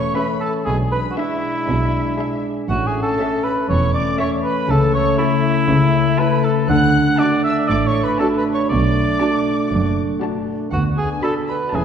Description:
cinematic, playful, whimsical film cue; 119 BPM; 4/4; straight; A major; A4 = 440 Hz
mellow cor anglais; second line; 0.0-11.8 s; E4 to F#5; -21 LUFS; right 1 dB
muted studio violin section; second line; 0.0-11.8 s; E5 to F#6; -31 LUFS; left 2 dB
mellow French horn section; sustained chords; 0.0-11.8 s; G#3 to D4; -23 LUFS; right 1 dB
concert harp; arpeggios; 0.0-11.8 s; A2 to F#5; -24 LUFS; left 8 dB
muted chamber cello section; bass; 0.0-11.8 s; D2 to D3; -24 LUFS; right 2 dB
muted chamber double bass section; bass; 0.0-11.8 s; E1 to D2; -23 LUFS; right 2 dB
muted chamber violin section; melody; 0.2-11.8 s; E5 to B5; -33 LUFS; left 3 dB
muted symphonic viola section; accompaniment; 0.2-11.8 s; C#4 to A4; -27 LUFS; right 3 dB
wet scoring stage reverb, RT60 1.6 s; heard from further back in the room; -16 LUFS; side -8 dB against mid
0.0-11.8 A section
0.0 A; 0.7 E7/B; 2.7 A; 4.7 A/C#; 6.7 D; 8.7 Bm7; 10.7 Bm/D

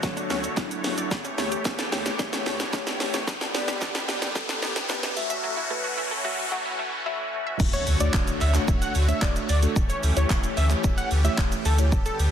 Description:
dance-pop; 111 BPM; 4/4; straight; D major; A4 = 440 Hz
mellow tine electric piano; accompaniment; 0.0-11.9 s; F#3 to F#5; -32 LUFS; left 2 dB; medium stereo tremolo, sidechain pumping
filtered supersaw swell; sustained chords; 0.0-12.3 s; D3 to C#5; -32 LUFS; equal; sidechain pumping
wide unison pluck; arpeggios; 0.0-7.6 s; F#3 to E5; -36 LUFS; right 2 dB
warm sub bass; bass; 0.0-12.3 s; C#1 to D2; -23 LUFS; equal; sidechain pumping
house drum kit; drums; 0.0-12.3 s; crash cymbal, handclaps, hi-hat, kick drum, shaker, snare drum; -26 LUFS; equal; soft clipping on snare
riser and impact; sound effects; 0.8-9.8 s; -35 LUFS; left 1 dB
group handclap; percussion; 0.6-11.5 s; -42 LUFS; right 6 dB
plucky unison lead; melody; 7.7-12.2 s; A4 to F#5; -30 LUFS; right 1 dB; sidechain pumping, digital delay
light reverb; dense, heavily limited modern master, high-pass filter; -22 LUFS; side -9 dB against mid
0.0-7.6 A section; 7.6-12.3 B section
build-up 0.0-7.6; drum fill 0.0-5.4; riser 0.8-7.6; drop 7.6-12.3; impact 7.6-9.8
0.0 F#m7/D; 1.1 A7/D; 3.3 G/D; 5.2 F#m7/D; 7.6 Dmaj7; 9.8 A7/D

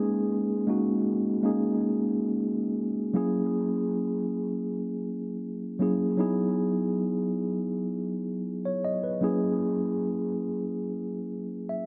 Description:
R&B; 79 BPM; 4/4; straight; A4 = 438 Hz
mellow tine electric piano; solo; 0.0-11.9 s; F#3 to E5; -28 LUFS; equal; analog delay
moderate spring reverb, RT60 1.6 s; echo-heavy mix; -28 LUFS; mono
0.0-3.1 A section; 3.1-11.9 B section
0.0 D#7sus4; 3.1 F#7; 6.2 Emaj7; 9.2 F#7

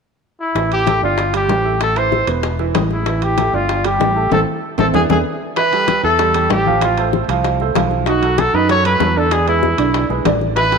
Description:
latin, salsa; 192 BPM; 4/4; straight; A minor; A4 = 441 Hz
clear trumpet; melody; 0.4-10.8 s; E4 to C#5; -17 LUFS; left 1 dB
clear baby grand piano; accompaniment; 0.6-10.8 s; D3 to F5; -20 LUFS; right 9 dB
fingered electric bass; bass; 0.6-10.8 s; E1 to F#2; -21 LUFS; left 1 dB
bongos; percussion; 0.6-10.7 s; -23 LUFS; left 13 dB
congas; percussion; 0.6-10.8 s; -25 LUFS; left 13 dB
timbales; percussion; 0.6-10.8 s; -26 LUFS; right 10 dB
moderate echo chamber reverb, RT60 2.1 s; 1960s-style stereo with parts hard left and right; -14 LUFS; side -5 dB against mid
0.6-5.6 A section; 5.6-10.8 B section
drum fill 4.3-5.6; band accent 4.3-5.6
0.0 N.C.; 0.6 A5; 1.2 G5; 1.8 Am; 2.4 E; 3.1 A5; 3.7 G5; 4.3 Am; 4.9 E7(no3); 5.6 A5; 6.8 F/A; 8.1 B7; 9.3 E7

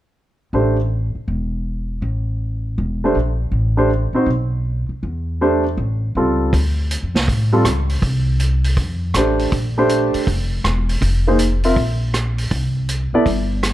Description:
jazz, big band swing; 160 BPM; 4/4; swing 65% on 8ths; A4 = 438 Hz
warm concert grand piano; accompaniment; 0.5-0.8, 3.0-13.3 s; G3 to E5; -17 LUFS; right 1 dB
upright bass; bass; 0.5-13.7 s; E1 to A2; -19 LUFS; equal
vintage drum kit; drums; 6.5-13.7 s; hi-hat, kick drum, rim click, snare drum; -23 LUFS; right 1 dB
little or no reverb; dark, warm production; -16 LUFS; side -14 dB against mid
0.5-6.5 A section; 6.5-13.7 B section
0.5 A5; 3.5 D5/A; 4.3 N.C.; 5.0 Emadd11; 5.8 A7alt; 6.5 Dm7; 8.0 N.C.; 8.8 F; 9.5 Bbmaj9#11; 11.0 Fm7; 11.8 N.C.; 12.5 C5

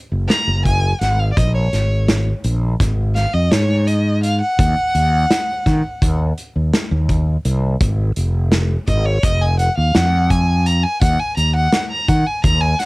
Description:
progressive instrumental, band music in an uneven meter; 168 BPM (eighths); 9/8; straight; Eb dorian; A4 = 440 Hz
fretless electric bass; bass; 0.1-12.7 s; F1 to Eb3; -16 LUFS; equal
rich violin; melody; 0.3-12.9 s; Db5 to Bb5; -20 LUFS; equal; cassette tape
loose indie drum kit; drums; 0.3-12.9 s; hi-hat, kick drum, snare drum; -19 LUFS; equal; cassette tape
little or no reverb; home recording on cassette; -14 LUFS; side -24 dB against mid
0.0-12.9 A section
violin solo 0.0-12.9
0.0 Gb; 1.4 Bbm; 4.6 Ebm; 7.8 Ab5; 11.0 Ebmadd11

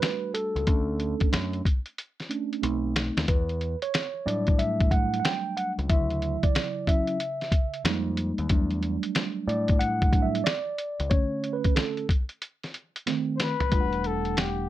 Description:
hip hop, jazz-hop; 92 BPM; 4/4; swing 65% on 16ths; E dorian; A4 = 438 Hz
mellow tine electric piano; accompaniment; 0.0-14.7 s; C#3 to G5; -28 LUFS; moving between left 2 dB and right 7 dB; auto-pan
lo-fi sampler-style drum kit; drums; 0.0-14.6 s; hi-hat, kick drum, snare drum, toms; -25 LUFS; equal
deep dub picked electric bass; bass; 0.6-14.7 s; E1 to A2; -30 LUFS; equal
breathy flugelhorn; melody; 13.4-14.7 s; G4 to C5; -29 LUFS; left 9 dB; slapback echo
light reverb; -24 LUFS; side -14 dB against mid
0.0-13.7 A section
tine electric piano solo 0.0-13.7; drum fill 2.6-3.3, 13.1-13.7
0.0 Em11 (rootless); 0.7 Dmaj7; 2.6 B7b9; 3.3 Em11; 5.9 Dmaj9; 7.8 Fm11; 8.5 Em11; 11.1 Bm9/D (rootless); 13.1 B7b9; 13.7 Em11

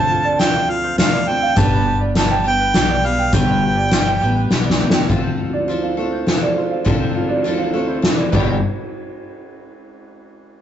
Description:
indie folk with a building arrangement; 102 BPM; 3/4; straight; A4 = 440 Hz
warm harmonica; melody; 0.0-4.5 s; F5 to A5; -18 LUFS; right 2 dB
clear baby grand piano; accompaniment; 0.0-5.1 s; G1 to D5; -32 LUFS; left 4 dB
picked twelve-string acoustic guitar; accompaniment; 0.0-8.6 s; G2 to A4; -24 LUFS; left 3 dB
tenor ukulele; arpeggios; 0.0-8.6 s; F4 to G5; -23 LUFS; right 4 dB
upright bass; bass; 0.0-8.6 s; G1 to D2; -24 LUFS; equal
soft-mallet drum kit; drums; 0.4-8.5 s; crash cymbal, hi-hat, kick drum, ride cymbal, snare drum; -19 LUFS; left 1 dB
fingerpicked steel-string acoustic guitar; accompaniment; 5.1-8.6 s; G2 to C5; -25 LUFS; equal
moderate studio ambience, RT60 0.5 s; rough rehearsal-room recording, warm saturation, nothing above 7.9 kHz; -15 LUFS; side -10 dB against mid
0.0-5.1 A section; 5.1-8.6 B section; 8.6-10.4 C section
drum fill 4.5-5.1
0.0 Dm7; 1.6 G; 5.1 Dm7; 8.3 G; 8.6 N.C.

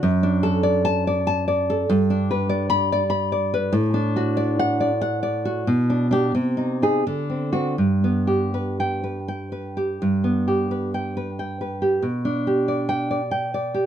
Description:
romantic piece for solo classical guitar; 78-99 BPM; 3/4; rubato; G major; A4 = 437 Hz
nylon-string guitar; solo; 0.0-13.9 s; F#2 to B5; -20 LUFS; equal
light reverb; -20 LUFS; side -10 dB against mid
0.0-10.0 A section; 10.0-13.9 B section
0.0 D/F#; 1.9 G; 3.7 D/A; 5.7 G/B; 6.3 Ab/C; 7.0 D7; 7.8 G; 12.0 G/B

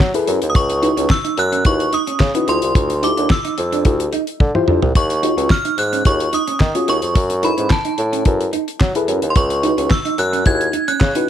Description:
early-eighties boogie funk; 109 BPM; 4/4; straight; A4 = 441 Hz
warm bassoon; bass; 0.0-11.1 s; C2 to Gb3; -20 LUFS; equal
damped 70s drum kit; drums; 0.0-11.3 s; handclaps, hi-hat, kick drum, snare drum, toms; -18 LUFS; equal
mellow FM electric piano; accompaniment; 0.1-11.3 s; Eb4 to Db5; -21 LUFS; left 4 dB; chorus
electric guitar at the edge of break-up; riff; 0.3-11.3 s; Db4 to Eb4; -25 LUFS; right 8 dB; wide subtle chorus
metallic FM bell; melody; 0.5-11.3 s; A5 to Ab6; -20 LUFS; right 1 dB; chorus, slapback echo
small room reverb; dark, warm production; -14 LUFS; side -10 dB against mid
0.0-11.3 A section
drum fill 4.4-5.0
0.0 Gbm11; 0.6 Dbm11; 2.5 Dm11; 5.0 Ebm11; 7.2 Gbm11; 9.4 Dbm11

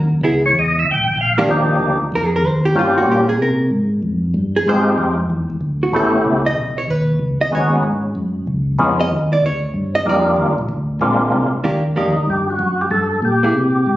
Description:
jazz; 189 BPM; 4/4; swing 63% on 8ths; Eb major; A4 = 437 Hz
mellow tonewheel organ; bass; 0.0-14.0 s; G#1 to C3; -19 LUFS; equal; chorus vibrato, slow rotary speaker
hollow-body jazz guitar; accompaniment; 0.2-13.5 s; D#3 to Eb5; -19 LUFS; right 1 dB
percussive tonewheel organ; melody; 0.5-14.0 s; F3 to G5; -17 LUFS; left 1 dB; slow rotary speaker, overdrive, chorus vibrato
moderate echo chamber reverb, RT60 1.3 s; recorded on a phone in the room, club reverb, nothing above 7.7 kHz; -15 LUFS; side -15 dB against mid
0.0-1.5 A section; 1.5-11.6 A section; 11.6-14.0 B section
tonewheel organ solo 0.0-1.5; hollow-body jazz guitar solo 1.5-11.6
0.2 C#m7; 0.9 A#7; 1.5 Ebmaj7; 2.8 Gm7b5; 3.4 Abadd9; 4.0 Fm9; 5.3 Dadd9; 5.9 A9; 6.6 B69; 7.8 Gbsus2; 8.5 Db9; 9.1 Ebmaj7; 11.0 Bb7; 11.6 Ebmaj7; 12.9 Gm69

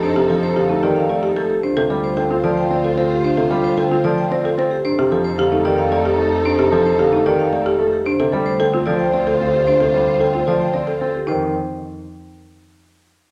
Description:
classical, minimalist pattern music; 112 BPM; 3/4; straight; F mixolydian; A4 = 440 Hz
vibraphone with hard mallets; melody; 0.0-11.5 s; G4 to G5; -26 LUFS; equal
dark French horn; second line; 0.0-11.1 s; F4 to C5; -24 LUFS; equal
warm symphonic violin section; sustained chords; 0.0-11.1 s; Eb4 to C5; -29 LUFS; equal
folk marimba with medium mallets; arpeggios; 0.0-11.5 s; D4 to C5; -23 LUFS; equal
clear chamber double bass section; bass; 0.0-11.5 s; D2 to F2; -29 LUFS; equal
warm concert grand piano; accompaniment; 0.2-11.5 s; C3 to C4; -25 LUFS; equal
wet large studio reverb, RT60 1.4 s; -18 LUFS; mono
0.0-11.3 A section; 11.3-12.9 B section
0.0 F13; 1.6 Dm7; 4.8 F13; 8.1 Dm7; 11.3 F5

